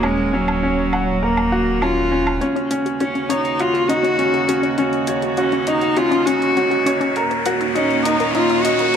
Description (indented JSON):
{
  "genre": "piano and strings electronica",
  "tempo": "101 BPM",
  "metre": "4/4",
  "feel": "straight",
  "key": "Eb minor",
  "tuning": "A4 = 440 Hz",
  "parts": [
    { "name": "bright cello", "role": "melody", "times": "0.0-9.0 s", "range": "Gb3 to Gb4", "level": "-20 LUFS", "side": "left 1 dB", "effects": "ping-pong delay" },
    { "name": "warm string quartet", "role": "sustained chords", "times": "0.0-9.0 s", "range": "Eb2 to Gb4", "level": "-25 LUFS", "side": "right 4 dB", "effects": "stereo widening" },
    { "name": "bright upright piano", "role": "riff", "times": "0.0-9.0 s", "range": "Db4 to Gb5", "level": "-21 LUFS", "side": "equal", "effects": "ping-pong delay" },
    { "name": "dark detuned saw bass", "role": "bass", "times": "0.0-2.4 s", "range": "Eb1", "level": "-25 LUFS", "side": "equal", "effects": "none" },
    { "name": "electronic woodblock and hi-hat", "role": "drums", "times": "0.0-9.0 s", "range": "none", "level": "-28 LUFS", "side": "right 1 dB", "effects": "none" },
    { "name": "analog pluck", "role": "arpeggios", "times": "2.4-8.9 s", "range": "Db4 to Bb4", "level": "-26 LUFS", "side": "left 4 dB", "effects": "chorus, ping-pong delay" },
    { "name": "riser", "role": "sound effects", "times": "4.7-9.0 s", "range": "none", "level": "-28 LUFS", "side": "equal", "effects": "none" }
  ],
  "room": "light reverb, small room ambience",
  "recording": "none",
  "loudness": "-16 LUFS",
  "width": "side -8 dB against mid",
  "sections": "0.0-2.4 A section; 2.4-9.0 B section",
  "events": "build-up 2.4-9.0; filter sweep on synth arpeggio sound 2.4-9.0; riser 4.7-9.0",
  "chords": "0.0 Ebm7",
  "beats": "| 0.04 0.63 1.22 1.82 | 2.41 3.01 3.60 4.19 | 4.79 5.38 5.98 6.57 | 7.16 7.76 8.35 8.95"
}